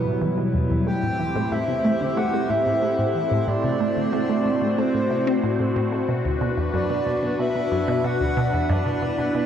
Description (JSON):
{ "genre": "ambient, sequencer-driven space music", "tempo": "92 BPM", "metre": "4/4", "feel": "straight", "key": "unclear", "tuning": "A4 = 440 Hz", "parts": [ { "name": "breathy flute-like synth lead", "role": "melody", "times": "0.0-9.5 s", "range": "B4 to G5", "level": "-26 LUFS", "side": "left 1 dB", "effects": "lush chorus, tape echo" }, { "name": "phased analog pad", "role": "sustained chords", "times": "0.0-9.5 s", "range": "B2 to C5", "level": "-24 LUFS", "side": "equal", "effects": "phaser, chorus" }, { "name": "resonant blip pluck", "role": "riff", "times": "0.1-9.5 s", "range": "D2 to C4", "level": "-25 LUFS", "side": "equal", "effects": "phaser, tape echo" } ], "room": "wet huge ambient reverb, RT60 7.8 s", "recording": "dark, warm production", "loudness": "-20 LUFS", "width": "side -9 dB against mid", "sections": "0.0-9.5 A section", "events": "none", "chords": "0.0 Emadd9; 0.9 Am7; 6.1 Bm", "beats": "0.22 | 0.87 1.52 2.18 2.83 | 3.48 4.13 4.78 5.44 | 6.09 6.74 7.39 8.04 | 8.70 9.35" }